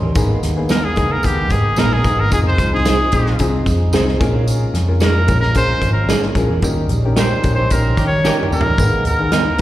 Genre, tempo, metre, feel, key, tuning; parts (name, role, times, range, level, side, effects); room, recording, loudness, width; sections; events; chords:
uptempo 1960s-style soul; 111 BPM; 4/4; straight; A4 = 440 Hz
warm upright piano; accompaniment; 0.0-9.6 s; Bb3 to C6; -23 LUFS; left 2 dB; tube saturation, slapback echo
percussive tonewheel organ; sustained chords; 0.0-9.6 s; F3 to Eb4; -28 LUFS; right 1 dB; slow rotary speaker
vintage muted picked electric bass; bass; 0.0-9.6 s; Ab1 to Eb3; -17 LUFS; equal
natural country drum kit; drums; 0.2-9.6 s; hi-hat, kick drum, snare drum, toms; -20 LUFS; equal
tambourine; percussion; 0.2-9.5 s; -34 LUFS; right 2 dB
bright trumpet; melody; 0.7-9.6 s; G4 to Db5; -19 LUFS; equal; slapback echo
electric guitar through a small old amp; stabs; 0.7-9.4 s; Cb4 to C5; -24 LUFS; right 5 dB; slapback echo, analog delay
warm horn section; second line; 8.0-8.6 s; Eb3 to G4; -26 LUFS; right 1 dB; slapback echo
light reverb, studio reverb; live gig heard through the venue's PA, recital hall reverb; -13 LUFS; side -14 dB against mid
0.2-9.6 A section
upright piano fill 0.0; trumpet solo 0.2-9.6; band accent 6.6-8.8; drum fill 8.2-8.8
0.2 Abmadd9; 2.3 Fm7; 4.2 Bbm7; 6.6 Eb7; 8.8 Abmadd9